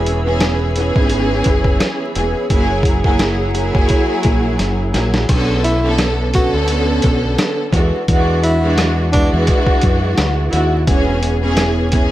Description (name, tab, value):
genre	hip hop, boom-bap hip-hop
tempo	86 BPM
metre	4/4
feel	swing 56% on 16ths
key	B dorian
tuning	A4 = 438 Hz
part	warm studio string section	accompaniment	0.0-12.1 s	D3 to A4	-17 LUFS	right 1 dB	dub echo
part	hollow soft pad	sustained chords	0.0-5.3 s	G#4 to E6	-27 LUFS	equal	ensemble chorus
part	deep dub fingered electric bass	bass	0.0-12.1 s	E1 to F#2	-18 LUFS	equal	none
part	dusty soul sampler-style drum kit	drums	0.1-12.1 s	crash cymbal, hi-hat, kick drum, rim click, snare drum	-17 LUFS	equal	none
part	breathy tenor saxophone	melody	5.6-9.3 s	D4 to F#4	-21 LUFS	equal	dub echo
room	light reverb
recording	echo-heavy mix, vinyl crackle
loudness	-13 LUFS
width	side -14 dB against mid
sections	0.0-5.3 A section; 5.3-12.1 B section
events	drum fill 4.6-5.3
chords	0.0 C#m7/E; 2.5 F#9; 5.3 Bm9; 7.7 E9; 10.9 C#m7/E